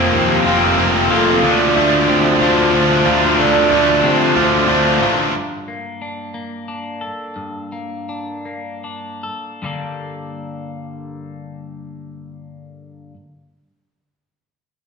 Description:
rock; 48-62 BPM (dotted quarters); 6/8; straight; G minor; A4 = 440 Hz
dark analog pad; sustained chords; 0.0-5.3 s; A3 to C6; -28 LUFS; right 1 dB
clean electric guitar; arpeggios; 0.0-13.2 s; F2 to A4; -24 LUFS; left 2 dB; phaser
vibraphone with soft mallets; arpeggios; 0.0-5.3 s; A4 to Bb5; -21 LUFS; right 6 dB
distorted electric guitar; riff; 0.0-5.3 s; F2 to D4; -17 LUFS; left 6 dB; distortion
tight distorted guitar; riff; 0.0-5.3 s; F2 to D4; -18 LUFS; right 7 dB; distortion
fuzz picked electric bass; bass; 0.0-5.3 s; F1 to C3; -22 LUFS; equal; overdrive
wet recital hall reverb, RT60 1.5 s; recorded in a church or concert hall; -12 LUFS; side -5 dB against mid
0.0-5.3 A section; 5.3-9.6 B section; 9.6-14.6 C section
slowing down 5.3-9.6
0.0 Fsus4; 1.4 Dm7; 5.3 Gmadd9
0.46 | 1.43 2.41 | 3.38 4.36 | 5.34 6.33 | 7.36 8.45 | 9.63 10.87 | 12.10

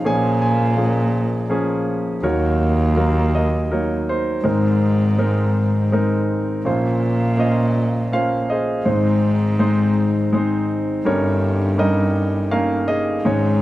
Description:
folk; 82 BPM; 3/4; straight; A4 = 440 Hz
warm grand piano; melody; 0.0-13.6 s; G1 to Ab5; -19 LUFS; equal
warm cello; bass; 0.1-13.6 s; Eb2 to Bb2; -19 LUFS; equal
little or no reverb; close, detailed microphones; -16 LUFS; side -15 dB against mid
0.0-6.7 A section; 6.7-13.6 B section
0.0 Bbm7; 2.2 Ebm; 4.4 Abadd9; 6.7 Bbmadd9; 8.9 Ab; 11.1 Eb7/G
| 0.05 0.78 1.51 | 2.25 2.98 3.71 | 4.45 5.19 5.93 | 6.67 7.40 8.14 | 8.87 9.60 10.33 | 11.06 11.79 12.52 | 13.25

